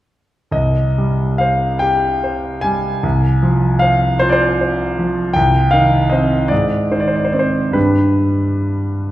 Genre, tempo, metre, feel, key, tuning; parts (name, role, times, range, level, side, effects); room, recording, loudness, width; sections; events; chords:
classical, romantic nocturne for solo piano; 38-54 BPM (dotted quarters); 12/8; rubato; C minor; A4 = 444 Hz
clear concert grand piano; solo; 0.5-9.1 s; C2 to Ab5; -13 LUFS; equal
wet recital hall reverb, RT60 1.5 s; heard from further back in the room; -13 LUFS; side -14 dB against mid
0.5-9.1 A section
0.5 Cm; 3.0 Fm/C; 5.3 Cm; 6.5 Ab; 7.8 G